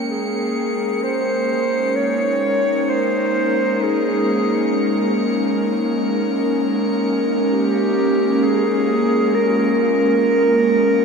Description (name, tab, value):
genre	ambient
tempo	free time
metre	none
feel	none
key	unclear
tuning	A4 = 441 Hz
part	airy breathy pad	sustained chords	0.0-11.0 s	Ab3 to G5	-18 LUFS	equal	chorus
part	drifting glass-harmonics texture	texture	0.0-11.0 s	Db7	-33 LUFS	left 2 dB	chorus, built-in reverb
part	mellow clarinet	melody	0.1-11.0 s	G4 to Db5	-20 LUFS	right 1 dB	ping-pong delay
room	wet huge ambient reverb, RT60 8.0 s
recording	dark, warm production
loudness	-16 LUFS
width	side -5 dB against mid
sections	0.0-11.0 A section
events	fade-out on synth texture 0.0-11.0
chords	0.1 Eb7sus4